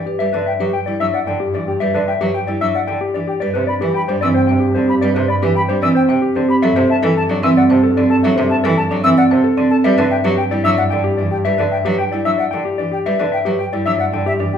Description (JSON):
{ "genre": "classical, minimalist pattern music", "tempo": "112 BPM", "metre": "3/4", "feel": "straight", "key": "G major", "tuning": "A4 = 441 Hz", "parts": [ { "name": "mellow electric guitar", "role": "melody", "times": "0.0-14.6 s", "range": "G4 to A5", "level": "-20 LUFS", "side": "left 7 dB", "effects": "none" }, { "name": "rich cello", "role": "accompaniment", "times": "0.0-14.5 s", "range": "C3 to G3", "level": "-22 LUFS", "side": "right 1 dB", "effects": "none" }, { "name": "rich chamber double bass section", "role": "bass", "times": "0.0-14.6 s", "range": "G2", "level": "-24 LUFS", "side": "right 2 dB", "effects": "none" }, { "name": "marimba with medium mallets", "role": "arpeggios", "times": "0.1-14.6 s", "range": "C4 to D5", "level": "-18 LUFS", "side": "right 3 dB", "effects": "none" }, { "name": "concert flute", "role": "arpeggios", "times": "0.5-14.6 s", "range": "E5 to E6", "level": "-22 LUFS", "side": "left 2 dB", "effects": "none" } ], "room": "wet large studio reverb, RT60 0.9 s", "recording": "heard from further back in the room", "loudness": "-14 LUFS", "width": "side -8 dB against mid", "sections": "0.2-14.6 A section", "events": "none", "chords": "0.0 Gmaj7; 3.4 Cmaj7/G; 6.6 D7/G; 9.8 Gmaj7", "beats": "| 0.20 0.74 1.27 | 1.81 2.35 2.88 | 3.42 3.95 4.49 | 5.02 5.56 6.09 | 6.63 7.17 7.70 | 8.24 8.77 9.31 | 9.85 10.38 10.92 | 11.45 11.99 12.52 | 13.06 13.60 14.13" }